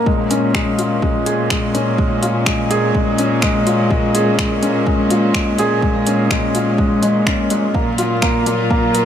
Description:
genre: piano and strings electronica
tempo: 125 BPM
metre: 4/4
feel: straight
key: Bb minor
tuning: A4 = 441 Hz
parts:
  - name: warm chamber string section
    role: sustained chords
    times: 0.0-9.1 s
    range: Gb3 to F4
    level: -23 LUFS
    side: equal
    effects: sidechain pumping
  - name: felt-muted upright piano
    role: riff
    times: 0.0-9.1 s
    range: Ab3 to Bb4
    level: -17 LUFS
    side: left 1 dB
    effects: tape echo
  - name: rich chamber cello section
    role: bass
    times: 0.1-9.1 s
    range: Bb2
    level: -22 LUFS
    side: right 1 dB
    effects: sidechain pumping
  - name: electronic kick drum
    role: drums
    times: 0.1-8.8 s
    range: none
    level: -20 LUFS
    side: equal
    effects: overdrive
  - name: deep house drum kit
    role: drums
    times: 0.3-9.0 s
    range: finger snaps, hi-hat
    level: -24 LUFS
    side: equal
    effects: overdrive, high-pass filter on hats, high-pass filter on snare, high-pass filter on room
room: light reverb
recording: none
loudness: -14 LUFS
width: side -9 dB against mid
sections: 0.1-9.1 A section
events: drop 0.1-9.1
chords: 0.1 Bbm7; 7.7 Gbmaj7/Bb

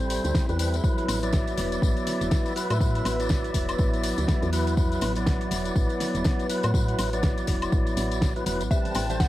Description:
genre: deep house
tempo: 122 BPM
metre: 4/4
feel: swing 59% on 16ths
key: unclear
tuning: A4 = 440 Hz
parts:
  - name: warm analog pad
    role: sustained chords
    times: 0.0-9.3 s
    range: F#3 to B5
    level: -31 LUFS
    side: equal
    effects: chorus, vintage 12-bit sampler grit, sidechain pumping, cassette tape
  - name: tonewheel organ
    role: stabs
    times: 0.0-9.3 s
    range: F#3 to D5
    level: -30 LUFS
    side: equal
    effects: overdrive, fast rotary speaker, sidechain pumping, cassette tape, analog delay
  - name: woody FM bass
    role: bass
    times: 0.0-9.3 s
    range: E1 to A2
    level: -29 LUFS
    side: equal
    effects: sidechain pumping
  - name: deep house drum kit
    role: drums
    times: 0.0-9.3 s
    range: hi-hat, snare drum, woodblock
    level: -33 LUFS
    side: equal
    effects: cassette tape
  - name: tambourine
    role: percussion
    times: 0.0-9.3 s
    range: none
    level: -38 LUFS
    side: left 12 dB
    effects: none
  - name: electronic kick drum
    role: drums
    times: 0.3-9.3 s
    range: none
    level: -25 LUFS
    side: equal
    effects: cassette tape
  - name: mallet-like synth pluck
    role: melody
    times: 8.7-9.3 s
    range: E5 to G5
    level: -31 LUFS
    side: left 1 dB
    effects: chorus, phaser, cassette tape
  - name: string machine, violins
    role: texture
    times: 8.7-9.3 s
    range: A5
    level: -38 LUFS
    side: equal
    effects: ensemble chorus, sidechain pumping, cassette tape
  - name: congas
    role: percussion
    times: 8.9-9.2 s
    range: none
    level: -39 LUFS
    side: right 10 dB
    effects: none
room: light reverb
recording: home recording on cassette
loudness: -22 LUFS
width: side -15 dB against mid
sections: 0.0-9.3 A section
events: none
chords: 0.0 Am9; 0.8 Esus2; 8.7 Am9

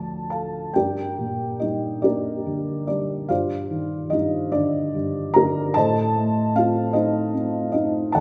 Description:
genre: classical, lyrical solo piano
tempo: 46-52 BPM (dotted quarters)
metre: 6/8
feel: rubato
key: G minor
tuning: A4 = 440 Hz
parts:
  - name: felt-muted upright piano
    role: solo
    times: 0.0-8.2 s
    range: D2 to Bb5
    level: -23 LUFS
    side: equal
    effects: none
room: wet concert hall reverb, RT60 2.1 s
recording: recorded in a church or concert hall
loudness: -23 LUFS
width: mono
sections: 0.7-8.2 A section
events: felt piano fill 0.0-0.7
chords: 0.0 Dm; 0.7 Gm; 3.3 Cmadd9/G; 5.8 Adim

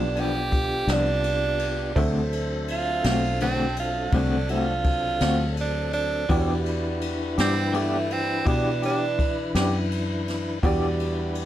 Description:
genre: slow blues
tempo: 55 BPM (dotted quarters)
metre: 12/8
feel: straight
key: unclear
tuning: A4 = 440 Hz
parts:
  - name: edgy tenor saxophone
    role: second line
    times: 0.0-9.5 s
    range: A3 to G4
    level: -27 LUFS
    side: right 4 dB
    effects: none
  - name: warm upright piano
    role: accompaniment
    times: 0.0-11.5 s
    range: F#4 to F5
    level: -33 LUFS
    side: right 4 dB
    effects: none
  - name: tonewheel organ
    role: sustained chords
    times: 0.0-11.5 s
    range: E3 to B4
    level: -31 LUFS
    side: left 2 dB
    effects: slow rotary speaker
  - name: fingered electric bass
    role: bass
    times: 0.0-11.5 s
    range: B1 to B2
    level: -28 LUFS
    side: equal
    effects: none
  - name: electric guitar through a small old amp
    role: accompaniment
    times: 0.2-10.9 s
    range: D3 to G4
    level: -27 LUFS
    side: left 2 dB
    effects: tremolo
  - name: jazz brush drum kit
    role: drums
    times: 0.2-11.5 s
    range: kick drum, ride cymbal, snare drum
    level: -30 LUFS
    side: left 1 dB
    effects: none
room: light reverb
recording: none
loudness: -22 LUFS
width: side -12 dB against mid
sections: 0.0-11.5 A section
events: tenor saxophone solo 0.0-11.5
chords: 0.0 G7; 2.0 D7; 6.3 Em7

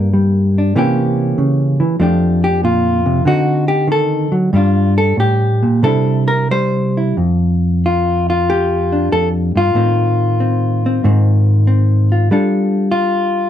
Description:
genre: solo jazz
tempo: 94 BPM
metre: 4/4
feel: swing 69% on 8ths, rubato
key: F major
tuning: A4 = 440 Hz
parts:
  - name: hollow-body jazz guitar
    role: solo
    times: 0.0-13.5 s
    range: F2 to C5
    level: -12 LUFS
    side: equal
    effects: none
room: light reverb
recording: none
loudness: -12 LUFS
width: side -10 dB against mid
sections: 0.0-7.2 A section; 7.2-13.5 B section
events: hollow-body jazz guitar solo 0.0-7.2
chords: 0.0 Gm; 0.7 C7b9; 2.0 F69; 3.3 D7b9; 4.5 Gm7; 5.8 Cadd9; 7.2 Fsus2; 9.8 Adim; 11.0 Ab6; 12.3 Gsus2

